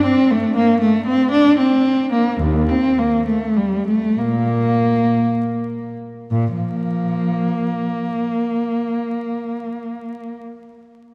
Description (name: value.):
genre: classical, baroque-style suite movement for unaccompanied cello.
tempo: 51-79 BPM (dotted quarters).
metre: 6/8.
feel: rubato.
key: Bb major.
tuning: A4 = 440 Hz.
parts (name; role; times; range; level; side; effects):
dark cello; solo; 0.0-10.4 s; Eb2 to D4; -19 LUFS; equal; none.
room: wet church reverb, RT60 3.4 s.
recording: dark, warm production, vinyl crackle.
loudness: -18 LUFS.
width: mono.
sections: 0.0-6.3 A section; 6.3-10.8 B section.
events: slowing down 1.6-6.3.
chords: none.